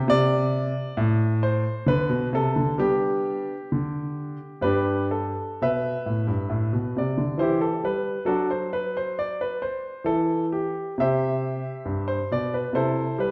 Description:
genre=classical, baroque-style suite movement for grand piano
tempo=67 BPM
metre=3/4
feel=rubato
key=G major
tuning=A4 = 440 Hz
part: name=bright concert grand piano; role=solo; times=0.0-13.3 s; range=G2 to E5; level=-25 LUFS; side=equal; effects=none
room=wet recital hall reverb, RT60 1.7 s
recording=dark, warm production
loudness=-25 LUFS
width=mono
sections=0.0-5.6 A section; 5.6-13.3 A section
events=none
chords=0.1 Am/C; 1.9 D5; 2.8 G; 5.6 Bm; 7.4 Emadd11; 8.3 D/F#; 10.1 N.C.; 11.0 C; 12.7 Am/C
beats=| 0.07 0.97 1.87 | 2.78 3.71 4.63 | 5.61 6.53 7.41 | 8.29 9.17 10.05 | 10.98 11.86 12.74

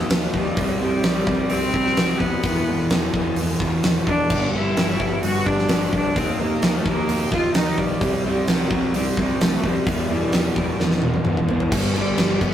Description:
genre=quiet-loud alternative rock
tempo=129 BPM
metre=4/4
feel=straight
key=G major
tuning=A4 = 440 Hz
part: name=crunchy overdriven guitar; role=riff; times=0.0-12.5 s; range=E2 to Eb4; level=-23 LUFS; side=equal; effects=spring reverb
part: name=overdriven picked electric bass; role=bass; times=0.1-12.5 s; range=E1 to Eb2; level=-31 LUFS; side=equal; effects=none
part: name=huge arena drum kit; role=drums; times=0.1-12.5 s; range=crash cymbal, hi-hat, kick drum, snare drum, toms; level=-22 LUFS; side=equal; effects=none
part: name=bright cello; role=melody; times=0.3-12.5 s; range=F#3 to F#4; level=-25 LUFS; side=left 1 dB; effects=none
room=moderate studio reverb, RT60 0.5 s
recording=rough rehearsal-room recording, tube saturation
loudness=-18 LUFS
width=side -10 dB against mid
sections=0.0-11.7 A section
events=drum fill 10.8-11.7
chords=0.0 Eb5; 0.6 C5; 2.4 E5; 4.3 G; 6.2 Eb5; 8.0 C5; 9.9 Em; 11.7 G5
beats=0.11 | 0.58 1.04 1.51 1.97 | 2.44 2.90 3.37 3.83 | 4.30 4.76 5.23 5.69 | 6.16 6.62 7.09 7.55 | 8.02 8.48 8.94 9.41 | 9.87 10.33 10.79 11.26 | 11.72 12.18

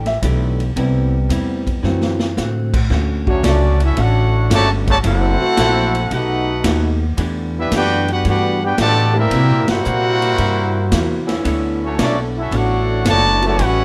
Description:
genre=jazz, big band swing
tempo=112 BPM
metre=4/4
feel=swing 69% on 8ths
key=unclear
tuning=A4 = 440 Hz
part: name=vintage hollow-body jazz guitar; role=accompaniment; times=0.0-13.8 s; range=A2 to C#5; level=-27 LUFS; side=equal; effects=none
part: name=warm concert grand piano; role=accompaniment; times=0.0-2.3 s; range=C3 to E5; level=-24 LUFS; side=equal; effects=none
part: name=upright bass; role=bass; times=0.0-13.8 s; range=F#1 to C3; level=-21 LUFS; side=equal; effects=none
part: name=swinging big-band drum kit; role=drums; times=0.1-13.8 s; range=crash cymbal, hi-hat, kick drum, ride cymbal, snare drum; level=-26 LUFS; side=equal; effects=none
part: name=clear trumpet section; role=melody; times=3.3-13.8 s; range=A3 to A5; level=-22 LUFS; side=equal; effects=none
part: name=clear trombone section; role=second line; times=3.3-13.8 s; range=B2 to G4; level=-24 LUFS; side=equal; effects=none
part: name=mellow saxophone section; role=sustained chords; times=3.3-13.8 s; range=C#3 to A4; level=-28 LUFS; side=equal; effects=none
room=light reverb, studio reverb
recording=rough home demo mix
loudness=-17 LUFS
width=mono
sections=0.0-2.9 A section; 2.9-13.8 B section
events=grand piano solo 0.0-2.9; drum fill 1.8-2.4; band accent 9.6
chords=0.0 Em11; 0.8 Am7; 1.8 D7; 2.9 Dmaj7; 5.1 F#m7b5; 6.1 B7b13; 7.2 Em11; 9.3 C7#11; 11.5 Bm9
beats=0.23 | 0.77 1.31 1.84 2.38 | 2.91 3.45 3.98 4.52 | 5.05 5.59 6.12 6.66 | 7.19 7.72 8.26 8.79 | 9.33 9.86 10.39 10.93 | 11.46 12.00 12.53 13.06 | 13.60

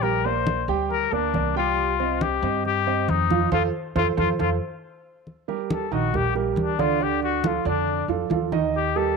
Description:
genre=latin, Cuban son and guajira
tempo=138 BPM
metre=4/4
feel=straight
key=unclear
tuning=A4 = 440 Hz
part: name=breathy trumpet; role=melody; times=0.0-9.2 s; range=Bb3 to C5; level=-25 LUFS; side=left 13 dB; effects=none
part: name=warm grand piano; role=arpeggios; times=0.0-9.2 s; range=D3 to G5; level=-25 LUFS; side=right 10 dB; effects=none
part: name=upright bass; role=bass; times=0.0-9.2 s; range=Bb1 to G2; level=-29 LUFS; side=left 1 dB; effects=none
part: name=congas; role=percussion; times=0.0-9.2 s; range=none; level=-29 LUFS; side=left 1 dB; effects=none
room=moderate spring reverb, RT60 1.5 s, small room ambience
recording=1960s-style stereo with parts hard left and right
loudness=-21 LUFS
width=side -4 dB against mid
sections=0.0-5.3 A section; 5.3-9.2 B section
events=band accent 3.5-5.3; trumpet solo 5.3-9.2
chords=0.0 Gm/Bb; 1.8 Cm; 3.5 F; 5.3 Ebmaj7; 7.0 Ebmaj7(b5, no3)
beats=| 0.03 0.47 0.91 1.34 | 1.78 2.22 2.65 3.09 | 3.53 3.96 4.40 4.83 | 5.27 5.70 6.14 6.57 | 7.01 7.44 7.88 8.31 | 8.74

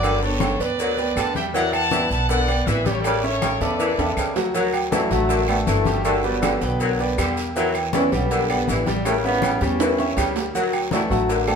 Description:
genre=latin, salsa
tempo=160 BPM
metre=4/4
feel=straight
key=D major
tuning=A4 = 440 Hz
part: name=bright trumpet section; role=melody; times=0.0-4.4 s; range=A4 to A5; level=-24 LUFS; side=equal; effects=none
part: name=mellow saxophone section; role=second line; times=0.0-11.5 s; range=C#3 to F#3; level=-27 LUFS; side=equal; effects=none
part: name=bright concert grand piano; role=accompaniment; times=0.0-11.6 s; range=C#3 to G5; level=-25 LUFS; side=equal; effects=none
part: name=upright bass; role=bass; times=0.0-11.6 s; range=G1 to E2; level=-26 LUFS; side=equal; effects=none
part: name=agogo bells and timbales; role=percussion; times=0.0-11.6 s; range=none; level=-29 LUFS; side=right 8 dB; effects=none
part: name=claves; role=percussion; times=0.0-11.6 s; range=none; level=-36 LUFS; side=right 1 dB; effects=none
part: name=congas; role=percussion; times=0.0-11.6 s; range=none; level=-29 LUFS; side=left 4 dB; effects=none
part: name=cowbell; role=percussion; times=0.0-11.5 s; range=none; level=-29 LUFS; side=left 6 dB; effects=none
part: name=guiro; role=percussion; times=0.0-11.6 s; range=none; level=-36 LUFS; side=right 5 dB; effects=none
part: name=maracas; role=percussion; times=0.0-11.6 s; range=none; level=-40 LUFS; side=left 4 dB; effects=none
part: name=mellow trombone section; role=melody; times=4.9-11.6 s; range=B2 to C#4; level=-24 LUFS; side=equal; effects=none
room=wet stone room reverb, RT60 1.0 s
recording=band playing live in one room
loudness=-18 LUFS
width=side -6 dB against mid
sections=0.0-4.6 A section; 4.6-11.6 B section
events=drum fill 4.0-4.6, 9.8-10.6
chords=0.0 Gmaj7; 1.5 Em7; 3.0 A7; 4.6 D; 6.1 Gmaj7; 7.6 Em7; 9.1 A7; 10.6 D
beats=| 0.03 0.41 0.79 1.16 | 1.54 1.92 2.29 2.67 | 3.05 3.42 3.80 4.17 | 4.55 4.93 5.30 5.68 | 6.05 6.43 6.80 7.18 | 7.55 7.93 8.30 8.68 | 9.05 9.43 9.80 10.18 | 10.55 10.93 11.30

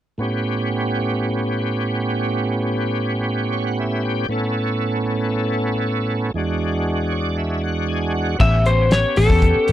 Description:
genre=straight-eighth soul blues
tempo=117 BPM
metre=4/4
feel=straight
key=A mixolydian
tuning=A4 = 440 Hz
part: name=bright tonewheel organ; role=accompaniment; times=0.2-9.7 s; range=E2 to G#5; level=-20 LUFS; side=right 1 dB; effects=slow rotary speaker, overdrive, chorus vibrato
part: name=lightly driven lead guitar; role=melody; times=8.4-9.7 s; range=A4 to E5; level=-18 LUFS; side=left 2 dB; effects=none
part: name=vintage muted fingered electric bass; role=bass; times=8.4-9.7 s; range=A1 to E2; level=-16 LUFS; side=left 1 dB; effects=none
part: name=cloth-damped thuddy drum kit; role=drums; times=8.4-9.7 s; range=crash cymbal, hi-hat, kick drum, snare drum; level=-19 LUFS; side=left 1 dB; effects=none
room=little or no reverb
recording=dry, close 1970s-style studio recording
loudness=-18 LUFS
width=side -12 dB against mid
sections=0.2-8.4 A section; 8.4-9.7 B section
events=tonewheel organ fill 3.3-4.3, 6.9-8.4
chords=0.2 A7; 6.4 E7; 8.4 A9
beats=| 0.20 0.71 1.22 1.74 | 2.25 2.76 3.28 3.79 | 4.30 4.82 5.33 5.84 | 6.36 6.87 7.38 7.89 | 8.41 8.92 9.43

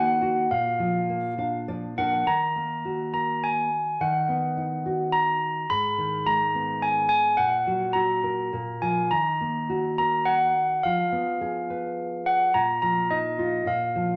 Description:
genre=children's music, lullaby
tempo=106 BPM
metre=3/4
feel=rubato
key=Eb minor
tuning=A4 = 443 Hz
part: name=handbells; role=melody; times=0.0-14.2 s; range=Eb5 to Cb6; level=-26 LUFS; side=equal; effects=none
part: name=nylon-string guitar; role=accompaniment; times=0.0-14.2 s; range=Ab2 to F5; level=-32 LUFS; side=equal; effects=none
room=wet large studio reverb, RT60 1.1 s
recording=none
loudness=-25 LUFS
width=mono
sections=0.0-2.3 A section; 2.3-14.2 B section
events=nylon-string guitar fill 1.1-2.3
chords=0.0 Ebm; 0.5 Bb; 2.3 Ebm; 4.0 B/D#; 5.7 Abm; 7.4 Gb/Bb; 8.5 Bb5; 9.1 Ebm; 10.9 Fdim; 12.5 Bbsus4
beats=| 0.51 1.09 1.68 | 2.27 2.85 3.43 | 4.01 4.58 5.14 | 5.69 6.25 6.82 | 7.39 7.96 8.54 | 9.12 9.71 10.28 | 10.85 11.42 11.99 | 12.55 13.11 13.67

